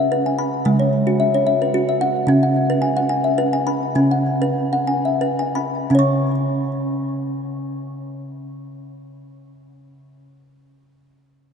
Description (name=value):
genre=world meditative, meditative tuned percussion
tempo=83-111 BPM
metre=3/4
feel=swing 54% on 16ths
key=C# minor pentatonic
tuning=A4 = 438 Hz
part: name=kalimba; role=solo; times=0.0-9.3 s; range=C#3 to C#6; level=-17 LUFS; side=equal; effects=ping-pong delay
room=wet cathedral reverb, RT60 5.5 s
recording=in a vast, echoing space, nothing above 10.9 kHz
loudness=-17 LUFS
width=side -6 dB against mid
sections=0.0-5.9 A section; 5.9-10.2 B section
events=slowing down 2.3-5.9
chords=0.0 C#m; 5.9 N.C.